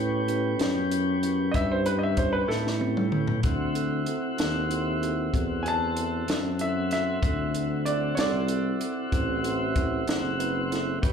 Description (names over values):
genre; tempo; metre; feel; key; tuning
slow blues; 63 BPM (dotted quarters); 12/8; straight; unclear; A4 = 440 Hz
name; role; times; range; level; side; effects
mellow tine electric piano; accompaniment; 0.0-11.1 s; C4 to C#5; -33 LUFS; right 6 dB; medium stereo tremolo, plate reverb, slapback echo
tonewheel organ; sustained chords; 0.0-11.1 s; B3 to G4; -32 LUFS; left 2 dB; slow rotary speaker, plate reverb
mellow tuba; bass; 0.0-11.1 s; F#1 to A2; -28 LUFS; left 1 dB; none
compact cocktail drum kit; drums; 0.3-11.1 s; hi-hat, kick drum, snare drum, toms; -29 LUFS; equal; none
bright upright piano; second line; 1.5-9.4 s; E4 to A5; -30 LUFS; right 1 dB; plate reverb, slapback echo
room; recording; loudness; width
light reverb; live gig heard through the venue's PA, club reverb; -24 LUFS; side -7 dB against mid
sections
0.0-11.1 A section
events
upright piano solo 0.0-11.1; drum fill 2.5-3.4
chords
0.0 A9; 3.4 D9